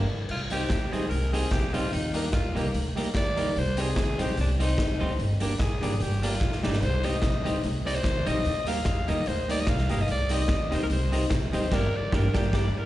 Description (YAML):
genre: ska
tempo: 147 BPM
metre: 4/4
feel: swing 55% on 8ths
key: C minor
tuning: A4 = 440 Hz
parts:
  - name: clean electric guitar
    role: accompaniment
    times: 0.0-12.7 s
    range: G3 to G4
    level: -33 LUFS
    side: right 4 dB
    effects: slapback echo
  - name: bright upright piano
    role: stabs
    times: 0.0-12.7 s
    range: Bb3 to Eb5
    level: -35 LUFS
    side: left 4 dB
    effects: slapback echo
  - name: upright bass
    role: bass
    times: 0.0-12.7 s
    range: G1 to F2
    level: -28 LUFS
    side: equal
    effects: none
  - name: raspy alto saxophone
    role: melody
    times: 0.3-12.9 s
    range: D4 to F5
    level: -32 LUFS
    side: equal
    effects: dub echo, slapback echo
  - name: raw garage drum kit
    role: drums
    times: 0.3-12.7 s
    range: crash cymbal, hi-hat, kick drum, snare drum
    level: -29 LUFS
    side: equal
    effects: none
  - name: group handclap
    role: percussion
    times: 0.7-11.4 s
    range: none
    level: barely audible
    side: none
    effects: none
room: light reverb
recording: live gig heard through the venue's PA, recital hall reverb, nothing above 10.6 kHz, faint mains hum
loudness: -24 LUFS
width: side -15 dB against mid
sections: 0.3-12.9 A section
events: band accent 0.0, 11.7-12.9; alto saxophone solo 0.3-12.9; drum fill 6.4-6.8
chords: 0.3 Cm; 5.2 Gm; 6.8 Cm; 8.5 Eb; 10.1 Cm; 11.7 Gm